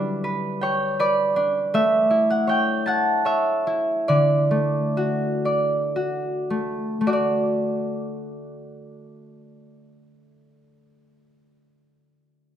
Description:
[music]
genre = children's music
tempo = 51-80 BPM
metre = 3/4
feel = straight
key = D major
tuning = A4 = 437 Hz
[part]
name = concert harp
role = melody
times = 0.0-12.0 s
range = D3 to A5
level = -20 LUFS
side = equal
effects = none
[sound]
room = moderate recital hall reverb, RT60 1.5 s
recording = minimal, uncompressed stereo recording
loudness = -20 LUFS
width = side -10 dB against mid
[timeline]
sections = 0.0-7.1 A section; 7.1-10.5 B section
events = slowing down 1.7-7.1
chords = 0.0 G; 1.7 A; 4.1 D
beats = 0.23 0.98 | 1.73 2.48 3.26 | 4.08 4.96 5.95 | 7.07 8.24 9.39

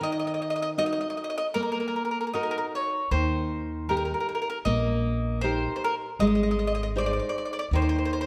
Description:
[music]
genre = italian folk, Italian serenade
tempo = 78 BPM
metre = 4/4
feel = rubato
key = Eb minor, Eb major from 3.1 s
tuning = A4 = 441 Hz
[part]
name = mandolin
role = melody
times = 0.0-8.3 s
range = Bb4 to Eb5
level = -31 LUFS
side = equal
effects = none
[part]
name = nylon-string guitar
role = accompaniment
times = 0.0-8.3 s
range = Eb3 to C5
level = -31 LUFS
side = equal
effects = none
[part]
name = upright bass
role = bass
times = 3.1-8.3 s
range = Ab1 to Eb2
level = -31 LUFS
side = equal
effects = none
[sound]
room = wet recital hall reverb, RT60 1.6 s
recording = none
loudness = -27 LUFS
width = mono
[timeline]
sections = 0.0-3.1 A section; 3.1-8.3 B section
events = break 0.0-3.1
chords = 0.0 Ebm; 3.1 Eb; 6.2 Ab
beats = | 0.01 0.78 1.55 2.33 | 3.11 3.88 4.66 5.43 | 6.19 6.95 7.72

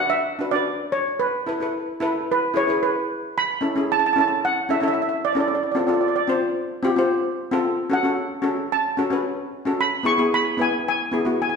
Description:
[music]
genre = calypso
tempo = 112 BPM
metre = 4/4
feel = straight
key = A major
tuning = A4 = 439 Hz
[part]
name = steel pan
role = melody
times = 0.0-11.6 s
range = B4 to C#6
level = -22 LUFS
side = right 3 dB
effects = none
[part]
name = steel pan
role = accompaniment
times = 0.0-11.6 s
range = B3 to C5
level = -22 LUFS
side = left 2 dB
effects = none
[sound]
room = wet recital hall reverb, RT60 1.4 s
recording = recorded in a church or concert hall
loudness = -20 LUFS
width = side -5 dB against mid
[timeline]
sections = 0.0-3.4 A section; 3.4-11.6 B section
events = steel pan solo 0.0-3.4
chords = 0.0 Bm; 1.2 Esus4; 2.3 E; 3.4 Aadd9; 5.5 F; 7.6 F#m; 9.8 E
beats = 0.13 0.67 | 1.21 1.74 2.28 2.82 | 3.35 3.89 4.42 4.96 | 5.50 6.03 6.57 7.10 | 7.64 8.17 8.71 9.24 | 9.78 10.32 10.85 11.39

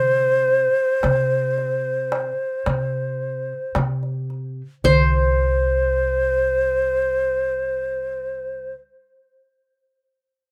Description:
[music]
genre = Turkish makam ensemble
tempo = 110 BPM (eighths)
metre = 10/8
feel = straight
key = unclear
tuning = A4 = 441 Hz
[part]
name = breathy bright low ney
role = melody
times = 0.0-8.7 s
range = C5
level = -22 LUFS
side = equal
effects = plate reverb
[part]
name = qanun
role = second line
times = 0.0-8.7 s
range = C5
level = -23 LUFS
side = equal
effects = plate reverb
[part]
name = upright bass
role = bass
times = 0.0-8.7 s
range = C2 to C3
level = -27 LUFS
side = equal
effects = none
[part]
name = darbuka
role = percussion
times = 0.5-5.4 s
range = none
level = -27 LUFS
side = equal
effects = none
[sound]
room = light reverb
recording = rough home demo mix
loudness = -21 LUFS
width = mono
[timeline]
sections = 0.0-4.8 A section; 4.8-10.3 B section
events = none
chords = none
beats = 0.48 1.03 1.57 2.12 2.67 3.21 3.76 4.30 | 4.85 5.39 5.94 6.48 7.03 7.58 8.12 8.67

